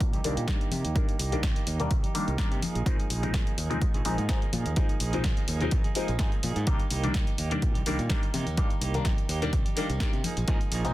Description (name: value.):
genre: filtered disco house.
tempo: 126 BPM.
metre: 4/4.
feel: swing 54% on 16ths.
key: C minor.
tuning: A4 = 441 Hz.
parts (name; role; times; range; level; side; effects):
direct-recorded clean electric guitar; riff; 0.0-10.9 s; F3 to Ab4; -36 LUFS; right 6 dB; tremolo, sidechain pumping, low-pass filter.
modern bright fingered electric bass; bass; 0.0-10.9 s; Bb1 to C3; -31 LUFS; equal; sidechain pumping, low-pass filter.
electronic kick drum; drums; 0.0-10.6 s; none; -27 LUFS; equal; none.
punchy analog drum machine; drums; 0.0-10.9 s; hi-hat, snare drum; -35 LUFS; equal; sidechain pumping on hats.
tambourine and congas; percussion; 0.0-10.9 s; none; -38 LUFS; left 3 dB; sidechain pumping on perc, low-pass filter on perc.
bright concert grand piano; accompaniment; 0.2-10.9 s; Eb3 to Eb4; -33 LUFS; left 2 dB; phaser, vintage 12-bit sampler grit, sidechain pumping, low-pass filter.
room: little or no reverb.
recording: dense, heavily limited modern master.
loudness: -25 LUFS.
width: side -16 dB against mid.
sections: 0.0-10.9 A section.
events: filter sweep 0.0-10.9.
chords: 0.0 Cm7; 2.6 Bb7sus4; 6.7 Cm7; 10.2 Bb7sus4.